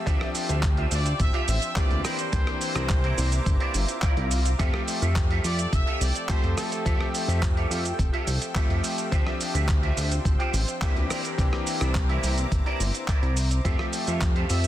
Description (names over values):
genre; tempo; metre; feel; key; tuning
nu-disco, nu disco; 106 BPM; 4/4; straight; F major; A4 = 439 Hz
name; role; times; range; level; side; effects
bright electric grand piano; accompaniment; 0.0-14.7 s; E3 to E5; -32 LUFS; left 2 dB; sidechain pumping, ping-pong delay
lush unison pad; sustained chords; 0.0-14.7 s; A4 to E6; -37 LUFS; equal; chorus, sidechain pumping
electric guitar with an envelope filter; riff; 0.1-14.6 s; E4 to G5; -34 LUFS; right 4 dB; ensemble chorus, ping-pong delay
chorused synth bass; bass; 0.1-14.7 s; D1 to F2; -25 LUFS; equal; none
dusty soul sampler-style drum kit; drums; 0.1-14.7 s; handclaps, hi-hat, rim click, shaker; -32 LUFS; right 1 dB; soft clipping on snare
electronic kick drum; drums; 0.1-14.3 s; none; -25 LUFS; equal; none
clear trumpet section; melody; 0.9-7.1, 14.5-14.7 s; A4 to E5; -33 LUFS; equal; ping-pong delay
swell; sound effects; 3.7-4.6 s; none; -36 LUFS; equal; none
room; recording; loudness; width
little or no reverb; dense, heavily limited modern master; -22 LUFS; side -13 dB against mid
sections
0.0-14.7 A section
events
swell 3.7-4.6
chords
0.1 Dm11; 2.0 C9; 4.6 Fmaj9; 9.1 Dm11; 11.1 C9; 13.7 Fmaj9